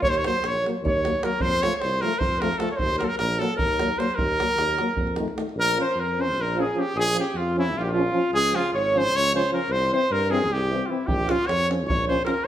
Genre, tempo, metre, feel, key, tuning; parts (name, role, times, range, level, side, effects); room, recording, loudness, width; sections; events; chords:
balkan folk, Balkan brass band; 304 BPM (eighths); 7/8; straight; Eb dorian sharp4, Bb dorian sharp4 from 5.6 s; A4 = 440 Hz
warm trumpet; melody; 0.0-12.5 s; E4 to Db5; -25 LUFS; equal
breathy alto saxophone; second line; 0.0-12.5 s; E4 to Db5; -27 LUFS; equal
warm tuba; bass; 0.0-12.5 s; Ab1 to G2; -29 LUFS; equal
davul; percussion; 0.0-5.5, 11.1-12.3 s; -30 LUFS; right 1 dB
mellow trombone; accompaniment; 0.3-12.3 s; A3 to Db4; -31 LUFS; left 4 dB
warm euphonium; accompaniment; 0.3-12.3 s; Eb3 to Gb3; -32 LUFS; right 4 dB
wet large studio reverb, RT60 1.2 s; band playing live in one room; -21 LUFS; side -11 dB against mid
0.0-5.6 A section; 5.6-12.5 B section
0.0 Ebm; 1.4 F; 2.8 Ebm; 5.0 F7; 5.6 Bbm; 8.3 Db; 9.7 C; 11.1 Bbm